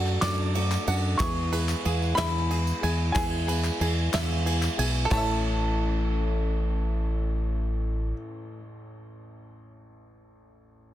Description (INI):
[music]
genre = indie folk with a building arrangement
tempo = 61 BPM (dotted quarters)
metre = 6/8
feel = straight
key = A major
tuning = A4 = 442 Hz
[part]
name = clear concert grand piano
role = accompaniment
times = 0.0-10.9 s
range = F#1 to E5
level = -38 LUFS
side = equal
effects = plate reverb
[part]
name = picked twelve-string acoustic guitar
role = accompaniment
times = 0.0-8.7 s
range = A2 to A4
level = -35 LUFS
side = left 5 dB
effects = plate reverb
[part]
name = bluegrass banjo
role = arpeggios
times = 0.0-8.2 s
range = F#4 to G#5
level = -35 LUFS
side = right 5 dB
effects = plate reverb
[part]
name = fingered electric bass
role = bass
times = 0.0-8.1 s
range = A1 to F#2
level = -26 LUFS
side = equal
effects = none
[part]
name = group handclap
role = percussion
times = 0.1-5.4 s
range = none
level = -38 LUFS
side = left 8 dB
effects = none
[part]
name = tambourine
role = percussion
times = 0.1-5.4 s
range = none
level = -43 LUFS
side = right 6 dB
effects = none
[part]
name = clear upright piano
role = melody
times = 0.2-8.1 s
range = G#5 to D6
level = -33 LUFS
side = equal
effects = plate reverb, analog delay
[part]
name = soft brush drum kit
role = drums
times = 0.2-5.3 s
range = crash cymbal, kick drum, ride cymbal, snare drum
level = -31 LUFS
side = right 2 dB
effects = soft clipping on snare
[sound]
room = studio ambience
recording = dense, heavily limited modern master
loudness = -24 LUFS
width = side -12 dB against mid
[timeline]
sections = 0.0-5.1 A section; 5.1-9.0 B section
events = none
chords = 0.0 D/F#; 1.2 E; 5.1 A